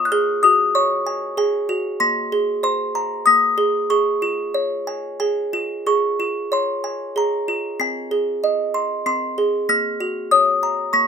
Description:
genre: children's music, lullaby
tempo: 95 BPM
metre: 3/4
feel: rubato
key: Db major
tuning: A4 = 440 Hz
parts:
  - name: music box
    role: solo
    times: 0.0-11.1 s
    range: Bb3 to Gb6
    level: -17 LUFS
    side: equal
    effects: none
room: light reverb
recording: rough home demo mix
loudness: -17 LUFS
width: side -6 dB against mid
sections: 0.0-5.9 A section; 5.9-11.1 B section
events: none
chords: 0.1 Gbsus2; 2.0 Abadd9; 3.9 Db; 7.8 Ab; 9.7 Gb

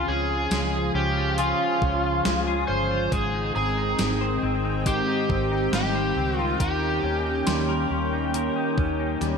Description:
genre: dream pop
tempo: 69 BPM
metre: 4/4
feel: straight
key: Ab major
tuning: A4 = 440 Hz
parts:
  - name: overdriven slide guitar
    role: melody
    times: 0.0-9.2 s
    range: F4 to C5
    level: -26 LUFS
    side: equal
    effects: ping-pong delay
  - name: lush unison pad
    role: sustained chords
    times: 0.0-9.4 s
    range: Db3 to G5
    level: -28 LUFS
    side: equal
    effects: chorus
  - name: clean electric guitar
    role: arpeggios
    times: 0.0-9.4 s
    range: Ab2 to C5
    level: -30 LUFS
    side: left 5 dB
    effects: analog chorus, ping-pong delay
  - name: vintage muted fingered electric bass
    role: bass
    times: 0.0-9.4 s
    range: G1 to Eb2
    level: -29 LUFS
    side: equal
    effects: none
  - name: gated 80s digital drum machine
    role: drums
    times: 0.5-9.4 s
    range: hi-hat, kick drum, snare drum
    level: -28 LUFS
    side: right 1 dB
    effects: gated reverb, gated reverb snare, overdrive
  - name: synth chime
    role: texture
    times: 3.6-9.4 s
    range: Bb5 to C6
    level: -38 LUFS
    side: equal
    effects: ensemble chorus, ping-pong delay
room: moderate lush hall reverb, RT60 2.8 s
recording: bright 1980s-style digital production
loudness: -22 LUFS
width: side -6 dB against mid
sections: 0.0-9.4 A section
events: drum fill 9.2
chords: 0.0 Db; 3.1 Abmaj7; 6.6 Eb7

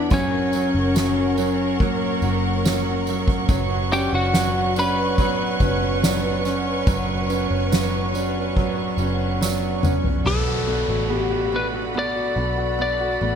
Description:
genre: pop ballad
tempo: 71 BPM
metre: 4/4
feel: straight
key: B harmonic minor, B minor from 10.3 s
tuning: A4 = 437 Hz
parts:
  - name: lightly driven lead guitar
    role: melody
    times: 0.0-13.4 s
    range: C#4 to B5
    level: -23 LUFS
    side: left 3 dB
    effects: none
  - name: clear concert grand piano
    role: accompaniment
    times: 0.0-13.4 s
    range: E3 to F#4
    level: -26 LUFS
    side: right 6 dB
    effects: wide subtle chorus
  - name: warm studio string section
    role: sustained chords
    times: 0.0-13.4 s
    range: A4 to C#6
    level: -28 LUFS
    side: right 3 dB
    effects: none
  - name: picked steel-string acoustic guitar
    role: arpeggios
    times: 0.0-13.4 s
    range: F#2 to F#4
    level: -30 LUFS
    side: left 8 dB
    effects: none
  - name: vintage muted fingered electric bass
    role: bass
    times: 0.0-13.4 s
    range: E1 to B1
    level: -27 LUFS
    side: equal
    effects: none
  - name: impact and downlifter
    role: sound effects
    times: 0.0-0.1, 10.3-13.4 s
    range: none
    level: -31 LUFS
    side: left 2 dB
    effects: none
  - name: soft-mallet drum kit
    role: drums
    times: 0.1-10.2 s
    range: kick drum, ride cymbal, snare drum, toms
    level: -25 LUFS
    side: equal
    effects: gated reverb
  - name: tambourine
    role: percussion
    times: 0.1-10.0 s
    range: none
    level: -36 LUFS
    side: right 10 dB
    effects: none
room: moderate plate reverb, RT60 1.9 s, small room ambience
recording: bright 1980s-style digital production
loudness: -19 LUFS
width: side -8 dB against mid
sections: 0.0-10.3 A section; 10.3-13.4 B section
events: drum fill 9.4-10.3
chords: 0.1 F#; 3.5 Bmadd9/F#; 10.3 Bm7

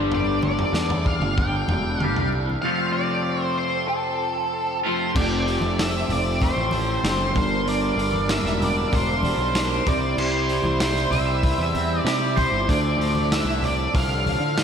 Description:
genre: psychedelic rock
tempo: 96 BPM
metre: 4/4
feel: straight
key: unclear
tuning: A4 = 440 Hz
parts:
  - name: hand-pumped harmonium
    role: sustained chords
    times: 0.0-14.6 s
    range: F3 to C5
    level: -30 LUFS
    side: right 3 dB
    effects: none
  - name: twangy electric guitar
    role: riff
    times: 0.0-14.6 s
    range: D2 to C5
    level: -27 LUFS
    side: left 1 dB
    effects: phaser, double-tracked left and right
  - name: fuzz picked electric bass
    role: bass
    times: 0.0-14.6 s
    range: E1 to D3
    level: -25 LUFS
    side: equal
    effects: overdrive
  - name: octave-fuzz lead guitar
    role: melody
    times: 0.1-14.6 s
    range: A4 to G5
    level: -25 LUFS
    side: left 1 dB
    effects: distortion, diffuse ambient delay
  - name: crunchy breakbeat drum kit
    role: drums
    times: 0.1-14.6 s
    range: crash cymbal, hi-hat, kick drum, snare drum, toms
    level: -26 LUFS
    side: equal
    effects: none
  - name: congas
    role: percussion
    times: 0.4-14.4 s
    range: none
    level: -33 LUFS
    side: left 2 dB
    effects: none
room: moderate lush hall reverb, RT60 2.7 s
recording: dreamy mix soaked in reverb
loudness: -20 LUFS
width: side -7 dB against mid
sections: 0.0-5.1 A section; 5.1-14.6 B section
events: none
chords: 0.0 Gsus2; 2.6 F; 7.3 Gm; 9.9 C; 12.7 Dm

